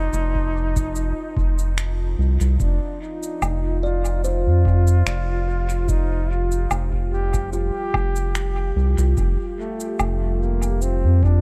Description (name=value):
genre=ambient dub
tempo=73 BPM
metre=4/4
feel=swing 53% on 16ths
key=F mixolydian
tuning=A4 = 441 Hz
part: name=mellow trombone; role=melody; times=0.0-11.4 s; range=A3 to G4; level=-31 LUFS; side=equal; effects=dub echo
part: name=deep dark ambient pad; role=sustained chords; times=0.0-11.4 s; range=F4 to A5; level=-34 LUFS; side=equal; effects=chorus, built-in reverb, vintage 12-bit sampler grit
part: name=kalimba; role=arpeggios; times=0.0-11.4 s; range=F4 to C6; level=-38 LUFS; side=equal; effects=tape echo
part: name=round analog bass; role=bass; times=0.0-11.4 s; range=F1 to F2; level=-22 LUFS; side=equal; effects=none
part: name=electronic cabasa, finger snaps and woodblock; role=drums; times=0.1-11.0 s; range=none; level=-32 LUFS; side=equal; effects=overdrive, small room ambience, dub echo
part: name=electronic kick drum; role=drums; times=0.4-11.4 s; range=none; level=-28 LUFS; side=equal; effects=overdrive, small room ambience
room=digital ambience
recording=none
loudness=-21 LUFS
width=mono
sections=0.0-11.4 A section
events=none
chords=0.0 F7